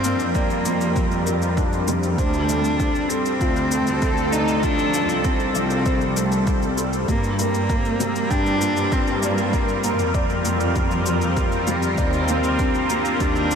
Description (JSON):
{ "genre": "piano and strings electronica", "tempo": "98 BPM", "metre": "4/4", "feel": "straight", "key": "G minor", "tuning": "A4 = 440 Hz", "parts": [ { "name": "dark cello", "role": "melody", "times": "0.0-13.6 s", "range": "Bb3 to Eb4", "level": "-25 LUFS", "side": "left 1 dB", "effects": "ping-pong delay" }, { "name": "lush unison pad", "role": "sustained chords", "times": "0.0-13.6 s", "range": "G3 to Bb4", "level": "-25 LUFS", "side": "equal", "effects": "chorus, phaser, sidechain pumping" }, { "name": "felt-muted upright piano", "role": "riff", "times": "0.0-13.6 s", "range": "F3 to G5", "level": "-26 LUFS", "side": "left 1 dB", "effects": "analog chorus, ping-pong delay" }, { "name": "muted studio cello section", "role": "bass", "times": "0.0-13.6 s", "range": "C2 to G2", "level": "-25 LUFS", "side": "equal", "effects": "sidechain pumping" }, { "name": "shaker", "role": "drums", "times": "0.0-13.6 s", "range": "none", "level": "-34 LUFS", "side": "left 2 dB", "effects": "overdrive" }, { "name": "electronic kick drum", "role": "drums", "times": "0.3-13.3 s", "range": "none", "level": "-24 LUFS", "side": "equal", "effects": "overdrive" } ], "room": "moderate huge ambient reverb, RT60 7.6 s", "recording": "dreamy mix soaked in reverb", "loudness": "-18 LUFS", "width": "side -7 dB against mid", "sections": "0.0-13.6 A section", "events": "none", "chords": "0.0 Gm; 2.2 Dm7; 7.1 Gm; 12.0 Ebmaj7", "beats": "0.35 0.96 1.57 | 2.19 2.80 3.41 4.02 | 4.63 5.25 5.86 6.47 | 7.08 7.70 8.31 8.92 | 9.53 10.14 10.76 11.37 | 11.98 12.59 13.21" }